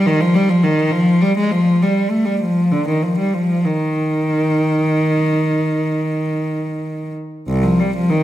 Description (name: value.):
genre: classical, baroque-style suite movement for unaccompanied cello.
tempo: 58-69 BPM (dotted quarters).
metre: 12/8.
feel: rubato.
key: Eb major.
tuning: A4 = 440 Hz.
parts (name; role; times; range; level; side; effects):
warm cello; solo; 0.0-8.2 s; C2 to A3; -15 LUFS; equal; none.
room: wet recital hall reverb, RT60 1.6 s.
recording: none.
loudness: -15 LUFS.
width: side -13 dB against mid.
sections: 0.0-7.5 A section.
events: none.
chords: none.